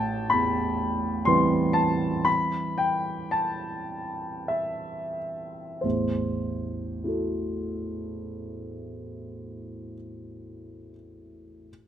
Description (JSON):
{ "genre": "classical, impressionist solo piano", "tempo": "41-68 BPM", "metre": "3/4", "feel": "rubato", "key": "A minor", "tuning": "A4 = 440 Hz", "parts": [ { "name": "clear baby grand piano", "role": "solo", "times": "0.0-11.7 s", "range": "A1 to C6", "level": "-26 LUFS", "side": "equal", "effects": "none" } ], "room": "moderate recital hall reverb, RT60 1.6 s", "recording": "close, detailed microphones", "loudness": "-25 LUFS", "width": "side -10 dB against mid", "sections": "0.0-5.8 A section; 5.8-9.4 B section", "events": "slowing down 0.0-5.8", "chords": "0.0 Am9; 5.8 Am6", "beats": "0.32 1.27 | 2.26 3.33 4.50 | 5.83 7.03 8.24" }